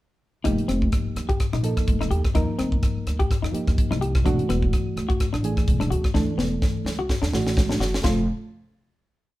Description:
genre	electric jazz fusion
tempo	126 BPM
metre	4/4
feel	swing 55% on 16ths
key	F mixolydian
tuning	A4 = 441 Hz
part	reed electric piano	accompaniment	0.4-8.3 s	E3 to Bb4	-28 LUFS	right 3 dB	none
part	clean electric guitar	stabs	0.4-8.2 s	B3 to G4	-28 LUFS	left 3 dB	none
part	upright bass	bass	0.4-8.3 s	E1 to F2	-26 LUFS	equal	none
part	tight funk drum kit	drums	0.4-8.2 s	hi-hat, kick drum, ride cymbal, rim click, snare drum	-24 LUFS	equal	none
room	light reverb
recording	band playing live in one room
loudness	-21 LUFS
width	side -16 dB against mid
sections	0.5-8.0 groove; 8.0-9.4 final chord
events	drum fill 6.1-8.0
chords	0.5 F9sus4; 4.3 E9sus4; 8.0 F

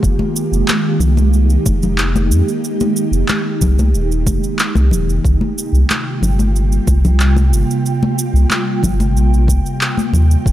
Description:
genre	sunset chillout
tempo	92 BPM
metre	4/4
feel	straight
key	unclear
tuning	A4 = 444 Hz
part	ethereal airy pad	sustained chords	0.0-10.5 s	C3 to G5	-19 LUFS	right 2 dB	ensemble chorus, built-in reverb
part	round analog bass	bass	0.0-10.5 s	Eb1 to F2	-13 LUFS	equal	none
part	electronic kick drum	drums	0.0-10.5 s	none	-19 LUFS	equal	none
part	electronic shaker and handclaps	drums	0.0-10.5 s	none	-21 LUFS	right 1 dB	none
part	congas	percussion	0.2-10.3 s	none	-21 LUFS	left 2 dB	none
room	digital ambience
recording	dry, gritty hardware recording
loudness	-12 LUFS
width	side -13 dB against mid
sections	0.0-10.5 A section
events	none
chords	0.0 Fm11; 5.2 C7sus4

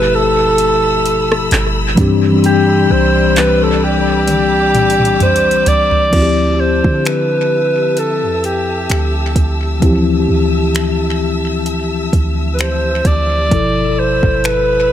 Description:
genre	contemporary R&B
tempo	65 BPM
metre	4/4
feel	swing 54% on 16ths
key	D dorian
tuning	A4 = 441 Hz
part	warm alto saxophone	melody	0.0-14.9 s	G4 to D5	-14 LUFS	equal	tape echo
part	mellow tine electric piano	accompaniment	0.0-14.9 s	B2 to A4	-16 LUFS	left 4 dB	medium stereo tremolo, tape echo
part	warm studio string section	sustained chords	0.0-14.9 s	G4 to E6	-23 LUFS	equal	none
part	clean 808-style bass	bass	0.0-14.9 s	G1 to D3	-18 LUFS	right 1 dB	none
part	smooth R&B drum kit	drums	0.6-14.7 s	crash cymbal, finger snaps, handclaps, hi-hat, kick drum, rim click, toms	-18 LUFS	right 1 dB	overdrive, tape echo
room	light reverb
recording	echo-heavy mix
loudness	-11 LUFS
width	side -10 dB against mid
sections	0.0-6.1 A section; 6.1-14.9 B section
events	drum fill 4.3-6.1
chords	0.0 G13; 2.0 Cmaj9; 6.1 Dm11; 13.5 G13

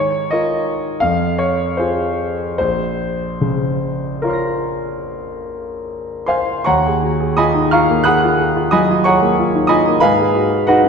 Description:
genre	classical, impressionist solo piano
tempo	71-93 BPM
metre	5/4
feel	rubato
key	Bb minor, Eb minor from 6.7 s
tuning	A4 = 440 Hz
part	clear concert grand piano	solo	0.0-10.9 s	Bb1 to Bb6	-14 LUFS	equal	none
room	wet scoring stage reverb, RT60 1.5 s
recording	dark, warm production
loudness	-14 LUFS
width	side -6 dB against mid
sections	0.0-6.7 A section; 6.7-10.9 B section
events	none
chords	0.0 Absus2; 1.0 Fm; 2.6 Bbmadd9; 6.7 Ebm11; 10.0 Abm7

